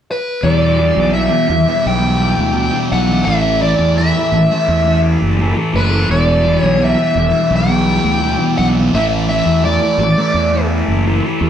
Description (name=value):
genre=rock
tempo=85 BPM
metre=4/4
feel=straight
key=E minor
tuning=A4 = 436 Hz
part: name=dark smooth lead guitar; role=melody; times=0.1-10.7 s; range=B4 to G5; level=-17 LUFS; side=equal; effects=wah, overdrive
part: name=combo organ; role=sustained chords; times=0.4-11.5 s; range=G3 to D5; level=-27 LUFS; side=right 4 dB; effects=none
part: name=thick fuzz guitar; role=riff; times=0.4-11.5 s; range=E2 to A3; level=-16 LUFS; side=left 1 dB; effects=distortion, phaser
part: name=fuzz fingered electric bass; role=bass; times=0.4-11.5 s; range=E1 to E2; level=-17 LUFS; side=right 1 dB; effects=overdrive
room=moderate stone room reverb, RT60 1.1 s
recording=band playing live in one room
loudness=-12 LUFS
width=side -9 dB against mid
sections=0.4-11.5 A section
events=none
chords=0.4 Em7; 3.3 Asus4; 6.1 Em7; 8.9 Asus4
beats=| 0.43 1.14 1.84 2.55 | 3.26 3.97 4.68 5.39 | 6.09 6.80 7.51 8.22 | 8.93 9.63 10.34 11.05